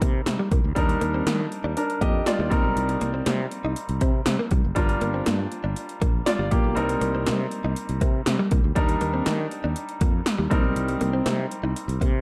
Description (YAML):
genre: 1980s-style pop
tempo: 120 BPM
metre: 4/4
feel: straight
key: C minor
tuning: A4 = 440 Hz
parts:
  - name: clear concert grand piano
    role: accompaniment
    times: 0.0-12.2 s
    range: G3 to Eb5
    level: -30 LUFS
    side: equal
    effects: none
  - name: direct-recorded clean electric guitar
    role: riff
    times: 0.0-12.1 s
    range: G3 to Eb4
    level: -34 LUFS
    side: equal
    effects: lush chorus, tape echo
  - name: sustaining fretless electric bass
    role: bass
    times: 0.0-12.2 s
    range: F#1 to Eb3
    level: -30 LUFS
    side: equal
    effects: none
  - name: 80s electronic pad drums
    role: drums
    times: 0.0-12.1 s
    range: hi-hat, kick drum, snare drum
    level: -27 LUFS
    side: equal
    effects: none
room: moderate digital room reverb, RT60 1.3 s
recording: dark, warm production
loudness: -24 LUFS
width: mono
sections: 0.0-12.2 A section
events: none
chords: 0.0 Cm7; 0.8 Ebmaj7; 2.5 Cm7; 4.8 Gm7; 6.8 Cm7; 8.8 Ebmaj7; 10.5 Cm7